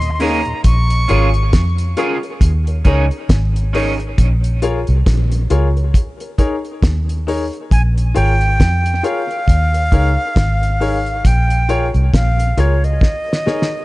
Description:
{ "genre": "dub reggae", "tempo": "68 BPM", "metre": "4/4", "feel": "swing 58% on 16ths", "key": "Bb dorian", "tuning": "A4 = 440 Hz", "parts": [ { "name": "bright reedy concert flute", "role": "melody", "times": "0.0-1.5, 7.7-13.8 s", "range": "Db5 to Db6", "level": "-20 LUFS", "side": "right 1 dB", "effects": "tape echo" }, { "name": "mellow tonewheel organ", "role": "accompaniment", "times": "0.0-0.5 s", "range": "Eb2 to Ab4", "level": "-26 LUFS", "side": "equal", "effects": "chorus vibrato, stopped rotary speaker" }, { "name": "vintage muted fingered electric bass", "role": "bass", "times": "0.0-13.0 s", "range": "Ab1 to F2", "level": "-15 LUFS", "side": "equal", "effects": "none" }, { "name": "cloth-damped thuddy drum kit", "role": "drums", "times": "0.0-13.8 s", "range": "hi-hat, kick drum, snare drum", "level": "-16 LUFS", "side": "equal", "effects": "none" }, { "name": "electric guitar at the edge of break-up", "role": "accompaniment", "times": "0.2-4.0 s", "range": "Bb3 to Ab4", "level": "-23 LUFS", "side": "right 4 dB", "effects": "analog chorus, tape echo" }, { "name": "warm upright piano", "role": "stabs", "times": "0.2-13.6 s", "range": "Eb4 to Db5", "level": "-23 LUFS", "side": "left 4 dB", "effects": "tape echo" } ], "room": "small room ambience", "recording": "nothing above 10.4 kHz", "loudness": "-13 LUFS", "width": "side -19 dB against mid", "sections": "0.0-13.8 A section", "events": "drum fill 13.0-13.8", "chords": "0.0 Eb7sus4; 0.6 Bbm7; 2.4 Eb7sus4; 4.2 Bbm7; 5.9 Eb7sus4; 7.7 Bbm7; 9.5 Eb7sus4; 11.2 Bbm7; 13.0 Eb7sus4", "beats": "| 0.65 1.53 2.41 3.30 | 4.18 5.06 5.95 6.83 | 7.71 8.60 9.48 10.37 | 11.25 12.13 13.02" }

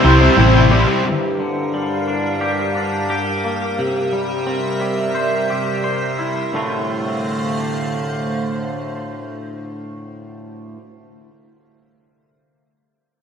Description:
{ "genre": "post-rock", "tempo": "88 BPM", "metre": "4/4", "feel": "straight", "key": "D minor", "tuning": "A4 = 440 Hz", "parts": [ { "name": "icy glass pad", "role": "sustained chords", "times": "0.0-10.0 s", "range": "G2 to Bb5", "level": "-23 LUFS", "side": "equal", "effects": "chorus, built-in reverb" }, { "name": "twangy electric guitar", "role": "arpeggios", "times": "0.0-10.8 s", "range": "D2 to C5", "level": "-22 LUFS", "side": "equal", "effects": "wide subtle chorus, ping-pong delay" }, { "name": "raw garage guitar", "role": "riff", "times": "0.0-1.0 s", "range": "C3 to C5", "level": "-18 LUFS", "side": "right 9 dB", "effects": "overdrive, wide subtle chorus" }, { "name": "thick fuzz guitar", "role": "riff", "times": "0.0-1.0 s", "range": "C3 to C5", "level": "-17 LUFS", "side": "left 7 dB", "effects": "distortion" }, { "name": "hollow-body short-scale fingered electric bass", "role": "bass", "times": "0.0-0.8 s", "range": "A1 to C2", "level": "-13 LUFS", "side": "equal", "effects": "none" } ], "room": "wet lush hall reverb, RT60 2.3 s", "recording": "dreamy mix soaked in reverb", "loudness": "-16 LUFS", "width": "side -7 dB against mid", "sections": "0.0-1.1 A section; 1.1-6.5 B section; 6.5-9.3 C section", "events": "none", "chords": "0.0 C7; 1.1 Gm7; 3.8 C7; 6.5 Dm7", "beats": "0.38 | 1.05 1.73 2.42 3.10 | 3.78 4.47 5.15 5.84 | 6.52 7.21 7.89 8.58" }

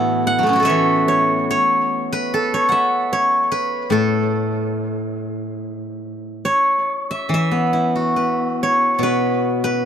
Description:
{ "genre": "chinese traditional, Chinese solo plucked strings", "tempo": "66-76 BPM", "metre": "4/4", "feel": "rubato", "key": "A gong mode", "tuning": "A4 = 437 Hz", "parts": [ { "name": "steel-string zither", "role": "solo", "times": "0.0-9.9 s", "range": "A2 to F#5", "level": "-16 LUFS", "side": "equal", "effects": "tape echo" } ], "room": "light reverb", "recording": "dry, close 1970s-style studio recording", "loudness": "-16 LUFS", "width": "side -8 dB against mid", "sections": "0.0-7.3 A section; 7.3-9.9 B section", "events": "none", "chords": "none", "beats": "| 0.71 1.51 2.32 3.12 | 3.92 4.73 5.56 6.43 | 7.31 8.17 9.01 9.82" }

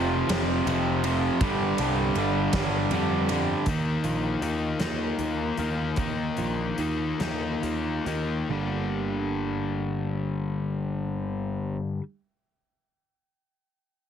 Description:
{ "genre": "quiet-loud alternative rock", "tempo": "45-54 BPM (dotted quarters)", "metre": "6/8", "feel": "straight", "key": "G minor", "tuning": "A4 = 440 Hz", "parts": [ { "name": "crunchy overdriven guitar", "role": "riff", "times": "0.0-12.0 s", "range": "F2 to Eb4", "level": "-28 LUFS", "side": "left 7 dB", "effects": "none" }, { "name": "crunchy overdriven guitar", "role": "riff", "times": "0.0-3.7 s", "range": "F2 to G3", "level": "-28 LUFS", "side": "right 18 dB", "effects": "none" }, { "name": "fuzz picked electric bass", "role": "bass", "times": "0.0-11.8 s", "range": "F1 to F2", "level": "-31 LUFS", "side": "equal", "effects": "overdrive" }, { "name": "big rock drum kit", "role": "drums", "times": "0.3-8.3 s", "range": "hi-hat, kick drum, ride cymbal, snare drum", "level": "-33 LUFS", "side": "equal", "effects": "none" }, { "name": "fingerpicked steel-string acoustic guitar", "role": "arpeggios", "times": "3.7-12.0 s", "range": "G2 to G4", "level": "-34 LUFS", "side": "right 8 dB", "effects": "none" } ], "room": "light reverb", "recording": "heavily compressed radio sound, multiband compression", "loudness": "-25 LUFS", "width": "side -8 dB against mid", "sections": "0.0-3.7 A section; 3.7-8.5 B section; 8.5-11.2 C section", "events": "slowing down 3.7-8.5", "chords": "0.0 F5; 1.4 G5; 3.7 Ebsus2; 8.5 Gm", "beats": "0.29 | 1.41 2.53 | 3.66 4.80 | 5.97 7.20 | 8.50 9.84" }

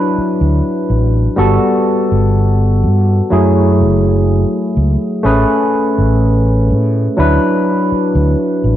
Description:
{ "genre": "vaporwave", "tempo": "62 BPM", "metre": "4/4", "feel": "straight", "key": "unclear", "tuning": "A4 = 440 Hz", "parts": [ { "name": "barky tine electric piano", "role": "accompaniment", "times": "0.0-8.8 s", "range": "F#3 to B4", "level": "-13 LUFS", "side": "equal", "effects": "lush chorus, analog delay" }, { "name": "fretless electric bass", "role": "bass", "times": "0.2-8.8 s", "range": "F#1 to A2", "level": "-12 LUFS", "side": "equal", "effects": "none" } ], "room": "light reverb", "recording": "cassette tape", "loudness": "-11 LUFS", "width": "side -12 dB against mid", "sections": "0.0-8.8 A section", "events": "none", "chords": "0.0 D69; 1.4 Gmaj9; 3.3 F#m9; 5.2 Amaj9; 7.2 D69", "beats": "0.41 | 1.38 2.35 3.31 4.28 | 5.25 6.22 7.18 8.15" }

